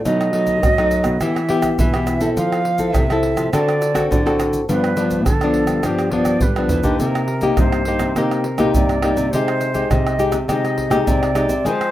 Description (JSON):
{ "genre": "samba and choro", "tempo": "104 BPM", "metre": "4/4", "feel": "straight", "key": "C minor from 7.0 s", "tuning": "A4 = 440 Hz", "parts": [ { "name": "jazz flute", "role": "second line", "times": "0.0-11.9 s", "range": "G4 to F5", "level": "-23 LUFS", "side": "right 2 dB", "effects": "plate reverb" }, { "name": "nylon-string guitar", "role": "accompaniment", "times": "0.0-11.9 s", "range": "G2 to A4", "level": "-19 LUFS", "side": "left 2 dB", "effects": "plate reverb" }, { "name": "nylon-string guitar", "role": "bass", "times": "0.1-11.9 s", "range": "G2 to C4", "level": "-24 LUFS", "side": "equal", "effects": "none" }, { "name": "tube shaker, surdo, pandeiro and tamborim", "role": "percussion", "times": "0.1-11.9 s", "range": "none", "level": "-22 LUFS", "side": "right 1 dB", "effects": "none" } ], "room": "wet studio reverb, RT60 0.5 s", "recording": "rough home demo mix", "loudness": "-15 LUFS", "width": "side -14 dB against mid", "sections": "0.0-7.0 A section; 7.0-11.9 B section", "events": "drum fill 6.6-7.0", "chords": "0.1 B7; 1.2 Em; 2.4 Fmaj7; 3.5 D7; 4.7 G7; 7.0 Cm7; 9.3 Abmaj7/C" }